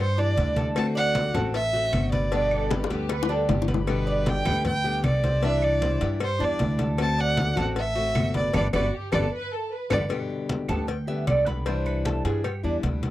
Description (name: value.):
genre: latin, Cuban son and guajira.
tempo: 154 BPM.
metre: 4/4.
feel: straight.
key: G major.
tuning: A4 = 440 Hz.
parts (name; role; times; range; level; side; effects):
warm violin; melody; 0.0-10.0 s; B4 to A5; -27 LUFS; right 1 dB; none.
picked steel-string acoustic guitar; accompaniment; 0.0-13.1 s; B2 to G4; -30 LUFS; left 4 dB; none.
Cuban tres; arpeggios; 0.0-12.8 s; D4 to A5; -30 LUFS; right 3 dB; none.
upright bass; bass; 0.0-13.1 s; G1 to G2; -27 LUFS; equal; none.
congas; percussion; 0.2-13.1 s; none; -30 LUFS; equal; none.
cowbell and bongos; percussion; 0.4-13.1 s; none; -33 LUFS; left 8 dB; none.
claves; percussion; 0.8-12.6 s; none; -39 LUFS; right 3 dB; none.
dark studio violin section; second line; 2.5-3.8, 8.7-10.1 s; F#4 to B4; -33 LUFS; right 1 dB; none.
room: little or no reverb.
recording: dry, close 1970s-style studio recording.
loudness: -22 LUFS.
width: side -15 dB against mid.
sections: 0.0-10.1 A section; 10.1-13.1 B section.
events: drum fill 2.7-3.9, 9.5-10.1; band accent 8.5-10.1; Cuban tres solo 10.1-13.1.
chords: 0.0 Cadd9; 0.8 D7; 2.3 G; 5.4 Cadd9; 7.0 D7; 8.5 G; 11.7 Cadd9.